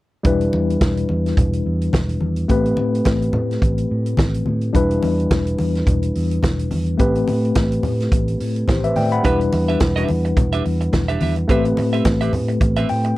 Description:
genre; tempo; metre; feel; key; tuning
disco; 107 BPM; 4/4; swing 56% on 16ths; unclear; A4 = 441 Hz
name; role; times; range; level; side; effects
tine electric piano; accompaniment; 0.2-13.2 s; G3 to B5; -21 LUFS; left 2 dB; medium stereo tremolo
vintage drum kit; drums; 0.2-13.2 s; hi-hat, kick drum, snare drum; -20 LUFS; right 1 dB; none
congas; percussion; 0.2-12.8 s; none; -25 LUFS; left 2 dB; none
fingered electric bass; bass; 0.3-13.1 s; E1 to A2; -21 LUFS; right 1 dB; none
clean electric guitar; accompaniment; 9.2-13.1 s; C4 to E5; -25 LUFS; right 7 dB; none
room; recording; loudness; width
little or no reverb; dry, close 1970s-style studio recording; -16 LUFS; side -17 dB against mid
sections
0.2-13.2 A section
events
tine electric piano fill 12.6-13.2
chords
0.2 Em7; 2.5 Am9; 4.7 Em7; 7.0 Am9; 9.2 Em7; 11.5 Am9

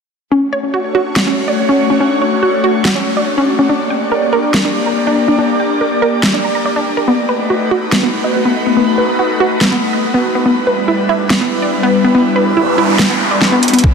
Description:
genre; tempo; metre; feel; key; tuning
future bass; 142 BPM; 4/4; half-time; D major; A4 = 444 Hz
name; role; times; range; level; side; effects
airy breathy pad; sustained chords; 0.5-13.9 s; G3 to D5; -15 LUFS; left 2 dB; chorus, phaser, sidechain pumping
wide unison pluck; arpeggios; 0.3-13.9 s; B3 to Bb5; -15 LUFS; moving between left 2 dB and right 6 dB; auto-pan, sidechain pumping, digital delay
dubstep drum kit; drums; 1.2-13.9 s; hi-hat, snare drum; -18 LUFS; equal; none
noise sweep; sound effects; 12.4-13.8 s; none; -17 LUFS; right 2 dB; none
electronic kick drum; drums; 13.8-13.9 s; none; -8 LUFS; equal; none
room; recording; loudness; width
moderate shimmer reverb, RT60 4.9 s; dense, heavily limited modern master; -11 LUFS; side -6 dB against mid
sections
0.3-13.9 A section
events
noise sweep 12.4-13.8; drum fill 13.6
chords
0.3 Dmaj7; 3.7 Gm; 7.1 B7; 10.5 Em7

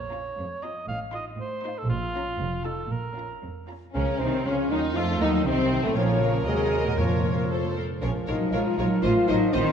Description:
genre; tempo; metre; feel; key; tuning
quick classical-period movement for symphony orchestra; 118 BPM; 2/4; straight; Bb minor; A4 = 440 Hz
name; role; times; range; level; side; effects
warm cor anglais; second line; 0.0-9.7 s; F4 to F5; -34 LUFS; right 2 dB; none
clear studio cello section; bass; 0.0-9.7 s; F2 to A3; -31 LUFS; right 2 dB; none
rich studio double bass section; bass; 0.0-9.6 s; F1 to F2; -29 LUFS; right 3 dB; none
warm studio violin section; melody; 0.1-9.6 s; A3 to C6; -35 LUFS; left 3 dB; none
rich studio violin section; second line; 0.1-9.6 s; A3 to C5; -36 LUFS; left 3 dB; none
rich studio viola section; accompaniment; 0.1-9.6 s; A3 to Bb4; -35 LUFS; left 2 dB; none
flute section; second line; 3.9-9.7 s; F4 to F5; -34 LUFS; right 1 dB; none
mellow clarinet; second line; 3.9-9.7 s; A3 to Db5; -35 LUFS; left 1 dB; none
warm bassoon; accompaniment; 3.9-9.7 s; A2 to Gb3; -34 LUFS; right 1 dB; none
mellow French horn section; sustained chords; 3.9-9.7 s; F3 to F4; -27 LUFS; left 3 dB; none
timpani; percussion; 7.0-7.5 s; F2; -33 LUFS; right 1 dB; none
room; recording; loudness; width
wet scoring stage reverb, RT60 1.7 s; dark, warm production; -23 LUFS; side -7 dB against mid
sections
0.0-3.9 A section; 3.9-9.7 B section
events
none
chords
0.0 Bbm; 0.9 F7/A; 1.9 Bbm; 2.4 F7; 2.9 Bbm; 5.0 F7; 6.0 Bbm; 6.5 Ebm; 7.0 Bbm/F; 7.5 F; 8.0 Bbm; 9.0 F7/A

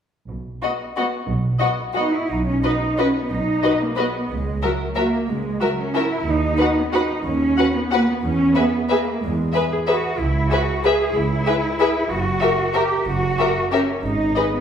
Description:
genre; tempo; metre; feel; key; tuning
classical; 170-206 BPM; 3/4; rubato; B major; A4 = 439 Hz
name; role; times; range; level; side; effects
muted symphonic cello section; bass; 0.3-14.6 s; B2 to G#4; -21 LUFS; right 1 dB; none
muted symphonic double bass section; bass; 0.3-14.3 s; F#1 to E2; -25 LUFS; right 2 dB; none
muted studio violin section; melody; 0.6-14.4 s; D#5 to F#5; -27 LUFS; left 4 dB; none
muted symphonic violin section; second line; 0.6-14.4 s; F#4 to B4; -25 LUFS; left 4 dB; none
muted symphonic viola section; accompaniment; 0.6-14.4 s; B3 to G#4; -27 LUFS; equal; none
room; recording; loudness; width
wet recital hall reverb, RT60 1.4 s; recorded in a church or concert hall; -18 LUFS; side -8 dB against mid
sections
0.3-2.3 A section; 2.3-14.6 B section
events
none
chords
0.3 N.C.; 2.3 B; 4.3 F#7/C#; 6.3 B/D#; 8.2 E; 10.2 C#m; 12.1 F#5; 14.0 G#5

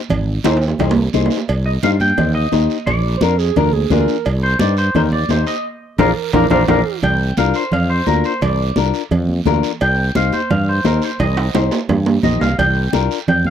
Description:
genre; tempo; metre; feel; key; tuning
latin, cumbia; 173 BPM; 4/4; straight; unclear; A4 = 440 Hz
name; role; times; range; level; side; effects
fretless electric bass; bass; 0.1-13.5 s; Ab1 to G2; -17 LUFS; equal; none
congas; percussion; 0.1-13.5 s; none; -22 LUFS; right 4 dB; none
cowbell and timbales; percussion; 0.1-13.5 s; none; -22 LUFS; right 5 dB; none
guiro; percussion; 0.1-13.5 s; none; -32 LUFS; right 12 dB; none
nylon-string guitar; accompaniment; 0.4-13.2 s; D4 to C5; -18 LUFS; left 16 dB; none
clean electric guitar; melody; 1.7-13.5 s; Bb4 to G5; -20 LUFS; equal; spring reverb, slapback echo
warm clarinet; second line; 3.2-7.0 s; Ab4 to C5; -21 LUFS; right 13 dB; none
room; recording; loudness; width
little or no reverb; dry, close 1970s-style studio recording; -14 LUFS; side -9 dB against mid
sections
0.0-7.0 A section; 7.0-13.5 B section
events
drum fill 0.4-1.5, 6.5-7.0, 11.2-12.6; band accent 5.6-7.0; clean electric guitar solo 7.0-13.5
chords
0.1 Ab; 1.5 Cm; 2.9 Bb; 4.3 Cm; 5.6 Bb; 7.0 Bb/C; 9.8 Cm; 12.6 Bb/C

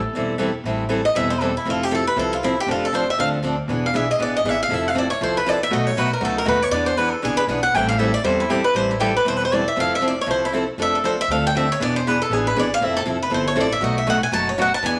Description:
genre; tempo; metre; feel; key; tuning
acoustic string swing (jazz manouche); 237 BPM; 4/4; swing 57% on 8ths; A minor; A4 = 440 Hz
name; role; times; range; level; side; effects
picked swing-style acoustic guitar; melody; 0.0-15.0 s; E4 to A5; -23 LUFS; equal; none
upright bass; bass; 0.0-15.0 s; E1 to E2; -30 LUFS; equal; none
picked steel-string acoustic guitar; accompaniment; 0.1-15.0 s; B2 to A4; -25 LUFS; equal; none
room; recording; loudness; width
moderate large studio reverb, RT60 1.2 s; none; -20 LUFS; mono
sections
0.6-8.8 A section; 8.8-15.0 A section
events
steel-string acoustic guitar solo 0.6-15.0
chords
0.0 Am7; 1.7 Fmaj7; 2.7 Dm7/F; 3.7 E7; 4.7 Fmaj7; 5.7 B7; 6.7 E7; 7.7 Am7; 9.8 Fmaj7; 10.8 Dm7/F; 11.8 E7; 12.8 Fmaj7; 13.8 B7

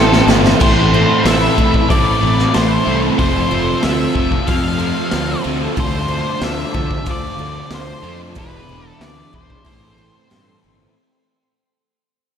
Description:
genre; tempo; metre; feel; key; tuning
rock, shoegaze and dream pop; 93 BPM; 4/4; straight; A minor; A4 = 440 Hz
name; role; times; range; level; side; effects
octave-fuzz lead guitar; melody; 0.0-10.6 s; A4 to F5; -22 LUFS; left 1 dB; distortion, diffuse ambient delay
airy breathy pad; sustained chords; 0.0-10.9 s; F4 to E6; -26 LUFS; equal; chorus
picked twelve-string acoustic guitar; arpeggios; 0.0-11.0 s; E3 to G#4; -26 LUFS; right 7 dB; analog chorus, diffuse ambient delay
overdriven electric guitar; riff; 0.0-6.3 s; F2 to A3; -22 LUFS; left 1 dB; spring reverb
overdriven semi-hollow guitar; riff; 0.0-10.9 s; A2 to A4; -22 LUFS; left 7 dB; wide subtle chorus
overdriven semi-hollow guitar; riff; 0.0-10.9 s; A2 to G#4; -22 LUFS; right 7 dB; reverse reverb
fuzz fingered electric bass; bass; 0.0-10.9 s; E1 to G2; -21 LUFS; equal; overdrive
raw garage drum kit; drums; 0.1-10.5 s; crash cymbal, hi-hat, kick drum, snare drum; -19 LUFS; equal; none
room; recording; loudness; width
moderate lush hall reverb, RT60 1.9 s; dreamy mix soaked in reverb; -13 LUFS; side -8 dB against mid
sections
0.6-10.9 A section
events
drum fill 0.0-0.6; fade-out 0.6-10.9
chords
0.0 Am7; 0.6 Amadd9; 3.2 Fmaj7; 5.8 Dm7; 8.4 E7; 9.7 Am7

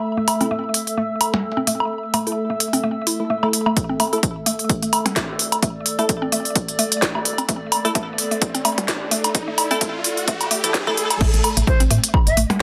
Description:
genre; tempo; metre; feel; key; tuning
minimal techno; 129 BPM; 4/4; swing 56% on 16ths; unclear; A4 = 440 Hz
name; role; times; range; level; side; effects
warbly tape-like pad; texture; 0.0-11.2 s; A3 to E6; -30 LUFS; equal; chorus, built-in reverb, phaser, sidechain pumping
mallet-like synth pluck; riff; 0.2-12.4 s; E3 to E4; -28 LUFS; equal; chorus, sidechain pumping, delay
garage drum kit; drums; 0.3-12.6 s; crash cymbal, hi-hat, snare drum; -24 LUFS; equal; none
woodblock and percussion blips; percussion; 0.3-12.6 s; none; -25 LUFS; equal; delay
wavetable chord stab; stabs; 0.4-11.0 s; A3 to A4; -27 LUFS; equal; delay
electronic kick drum; drums; 3.8-12.2 s; none; -24 LUFS; equal; none
riser; sound effects; 5.9-11.2 s; none; -33 LUFS; equal; none
woody FM bass; bass; 11.2-12.4 s; G1 to A2; -22 LUFS; equal; sidechain pumping
silver concert flute; melody; 11.7-12.4 s; C5 to E5; -26 LUFS; equal; delay
room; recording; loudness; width
wet small room reverb, RT60 0.5 s; dense, heavily limited modern master, high-pass filter; -20 LUFS; mono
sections
0.0-11.2 A section; 11.2-12.6 B section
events
build-up 0.0-11.2; filter sweep on synth arpeggio sound 0.0-11.2; filter sweep on synth stab 0.0-11.2; filter sweep 0.0-11.2; riser 5.9-11.2; drop 11.2-12.6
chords
0.0 A5

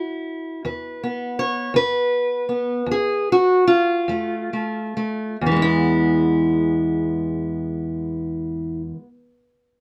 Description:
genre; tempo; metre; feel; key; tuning
acoustic country blues, solo or duo; 44-57 BPM (dotted quarters); 12/8; straight; unclear; A4 = 435 Hz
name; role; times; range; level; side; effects
fingerpicked steel-string acoustic guitar; solo; 0.0-9.1 s; E2 to C#5; -22 LUFS; equal; none
room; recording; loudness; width
light reverb; close, detailed microphones; -21 LUFS; mono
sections
0.0-5.4 A section; 5.4-9.8 B section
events
slowing down 0.0-5.4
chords
0.0 E5; 4.1 F; 5.4 E

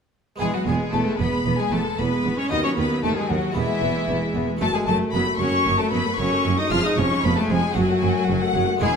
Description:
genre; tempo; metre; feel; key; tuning
classical, baroque-style concerto movement with solo episodes; 114 BPM; 4/4; straight; E major; A4 = 439 Hz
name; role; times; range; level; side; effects
rich cello; melody; 0.4-8.9 s; E3 to E#4; -26 LUFS; left 1 dB; none
warm chamber violin section; melody; 0.4-9.0 s; E5 to E#6; -26 LUFS; left 6 dB; none
clear chamber violin section; second line; 0.4-9.0 s; E4 to E#5; -30 LUFS; left 1 dB; none
harpsichord; accompaniment; 0.4-9.0 s; D#2 to A4; -29 LUFS; right 1 dB; none
rich chamber viola section; accompaniment; 0.4-9.0 s; D#3 to E4; -29 LUFS; left 1 dB; none
rich symphonic cello section; bass; 0.4-8.9 s; D#2 to F#2; -27 LUFS; right 4 dB; none
warm chamber double bass section; bass; 0.4-8.9 s; E1 to D#2; -28 LUFS; right 5 dB; none
room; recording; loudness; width
wet recital hall reverb, RT60 1.8 s; dark, warm production; -19 LUFS; side -6 dB against mid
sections
0.4-9.0 A section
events
none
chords
0.4 E; 2.5 B/D#; 3.6 E; 4.6 F#m; 6.7 C#/E#; 7.8 F#m

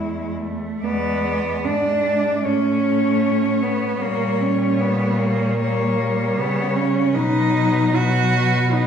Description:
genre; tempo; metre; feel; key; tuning
classical, lyrical piece for cello ensemble; 76 BPM; 4/4; rubato; unclear; A4 = 440 Hz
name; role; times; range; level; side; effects
clear cello; melody; 0.0-8.9 s; E4 to D5; -27 LUFS; left 6 dB; none
clear cello; second line; 0.0-8.9 s; G#3 to F#4; -21 LUFS; right 3 dB; none
rich cello; accompaniment; 0.0-8.9 s; F#3 to A3; -24 LUFS; left 2 dB; none
rich cello; bass; 0.0-8.9 s; E2 to C#3; -24 LUFS; equal; none
room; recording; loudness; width
wet recital hall reverb, RT60 1.3 s; heard from further back in the room; -17 LUFS; side -8 dB against mid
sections
0.8-8.9 A section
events
none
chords
0.0 E; 2.4 A; 4.0 A#m6; 7.2 B

